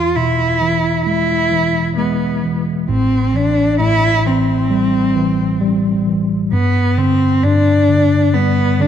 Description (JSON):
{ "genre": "pop", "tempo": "66 BPM", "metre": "4/4", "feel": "straight", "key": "A minor", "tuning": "A4 = 438 Hz", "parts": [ { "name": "warm cello", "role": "melody", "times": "0.0-8.9 s", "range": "B3 to F4", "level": "-16 LUFS", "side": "equal", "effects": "none" }, { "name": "tine electric piano", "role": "accompaniment", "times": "0.0-8.9 s", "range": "A1 to G#3", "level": "-16 LUFS", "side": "left 1 dB", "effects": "medium stereo tremolo" } ], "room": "light reverb, small room ambience", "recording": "dark, warm production", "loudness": "-13 LUFS", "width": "side -9 dB against mid", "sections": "0.0-2.9 A section; 2.9-8.9 B section", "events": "none", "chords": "0.0 E; 2.9 Am7; 6.5 G5" }